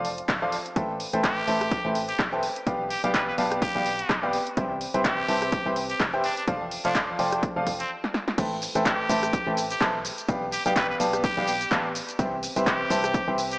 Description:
piano house; 126 BPM; 4/4; swing 56% on 16ths; A minor; A4 = 440 Hz
clear grand piano; riff; 0.0-13.4 s; F3 to A5; -27 LUFS; equal; sidechain pumping, analog delay
solid FM bass; bass; 0.0-13.6 s; D1 to C2; -36 LUFS; equal; tube saturation, sidechain pumping
punchy analog drum machine; drums; 0.0-13.6 s; crash cymbal, handclaps, hi-hat, rim click, shaker, snare drum; -30 LUFS; equal
electronic kick drum; drums; 0.3-13.2 s; -30 LUFS; equal; overdrive
trumpet with straight mute; melody; 1.2-13.6 s; C4 to B4; -30 LUFS; equal; analog delay
wet plate reverb, RT60 2.0 s, digital ambience; dreamy mix soaked in reverb, small speaker sound; -23 LUFS; side -24 dB against mid
0.0-8.4 A section; 8.4-13.6 B section
drum fill 8.0-8.4; drop 8.4-13.6
0.0 F6; 0.8 Am9; 2.4 G7/B; 4.6 Cmaj7; 6.2 F6; 8.4 Am9; 10.0 G7/B; 12.2 Cmaj7

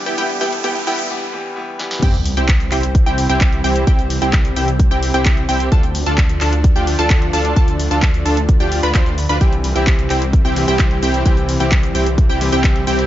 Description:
EDM, festival progressive house; 130 BPM; 4/4; straight; C major; A4 = 440 Hz
bright concert grand piano; accompaniment; 0.0-2.0, 9.4-13.1 s; E3 to G4; -24 LUFS; left 2 dB; sidechain pumping, digital delay
lush unison pad; sustained chords; 0.0-13.1 s; G2 to D5; -27 LUFS; right 1 dB; chorus, sidechain pumping
riser, noise sweep and sub drop; sound effects; 0.0-3.9 s; -27 LUFS; right 1 dB
wide unison pluck; arpeggios; 0.1-13.1 s; G5 to C6; -24 LUFS; right 1 dB; sidechain pumping, digital delay
supersaw stab; riff; 0.1-13.1 s; B3 to B4; -21 LUFS; right 1 dB; sidechain pumping, digital delay
house drum kit; drums; 0.1-13.1 s; crash cymbal, handclaps, hi-hat, shaker, snare drum; -24 LUFS; equal
wide detuned saw bass; bass; 2.0-13.1 s; C2 to D2; -20 LUFS; equal; chorus, sidechain pumping
electronic kick drum; drums; 2.0-12.7 s; -14 LUFS; equal
little or no reverb; high-pass filter, nothing above 7.5 kHz; -13 LUFS; side -13 dB against mid
0.0-2.0 A section; 2.0-13.1 B section
build-up 0.0-2.0; riser 0.0-1.1; noise sweep 0.2-2.0; break 1.1-2.0; drum fill 1.8; drop 2.0-13.1; impact 2.0-3.9
0.0 G; 2.0 C; 5.7 Dm; 9.4 C

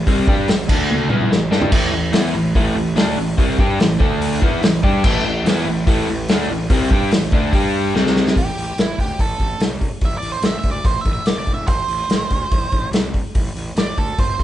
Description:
blues rock power trio and southern rock; 145 BPM; 4/4; straight; A minor; A4 = 441 Hz
crunchy overdriven guitar; riff; 0.0-8.4 s; A2 to G4; -19 LUFS; equal
fuzz picked electric bass; bass; 0.0-14.4 s; E1 to G2; -25 LUFS; equal; overdrive
vintage drum kit; drums; 0.1-14.4 s; crash cymbal, hi-hat, kick drum, snare drum, toms; -18 LUFS; equal
octave-fuzz lead guitar; melody; 8.4-14.4 s; E4 to E5; -24 LUFS; right 4 dB; distortion
light reverb; band playing live in one room, nothing above 10.3 kHz; -15 LUFS; side -12 dB against mid
0.0-8.4 A section; 8.4-14.4 B section
drum fill 0.9-1.7, 7.9-8.4
0.0 Am; 0.7 D5; 1.1 Am; 4.0 D5; 4.4 Am; 7.5 G5; 7.9 C5; 8.4 A5; 11.3 Dsus2/E; 11.7 Am

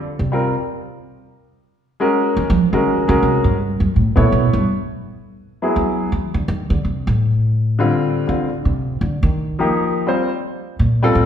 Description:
jazz piano trio; 166 BPM; 4/4; swing 65% on 8ths; A4 = 440 Hz
upright bass; bass; 0.0-11.3 s; Gb2 to F#3; -17 LUFS; equal
clear baby grand piano; melody; 0.3-11.3 s; D3 to C#5; -18 LUFS; left 1 dB
wet recital hall reverb, RT60 1.5 s; recorded in a church or concert hall; -16 LUFS; side -9 dB against mid
0.0-10.8 A section
upright bass solo 0.0-10.8
0.0 Bbadd9; 0.7 N.C.; 2.1 Ebm11; 3.6 A9; 5.0 D6; 6.5 Cmadd9; 7.2 N.C.; 7.9 Csus2; 9.3 Ebadd9; 10.1 Fsus2

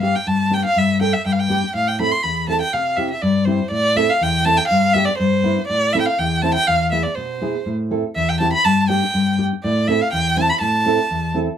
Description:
klezmer; 122 BPM; 2/4; straight; C major, A minor from 3.7 s; A4 = 440 Hz
warm violin; melody; 0.0-11.3 s; C5 to C6; -18 LUFS; right 1 dB
nylon-string guitar; accompaniment; 0.0-11.5 s; E2 to C5; -19 LUFS; left 1 dB
wet small room reverb, RT60 0.5 s; minimal, uncompressed stereo recording; -16 LUFS; side -9 dB against mid
0.0-3.7 A section; 3.7-11.6 B section
0.0 G; 1.7 Am; 2.7 C; 3.7 Am; 4.7 G; 5.7 Am; 6.7 E; 7.7 Am; 8.6 G; 9.6 Am

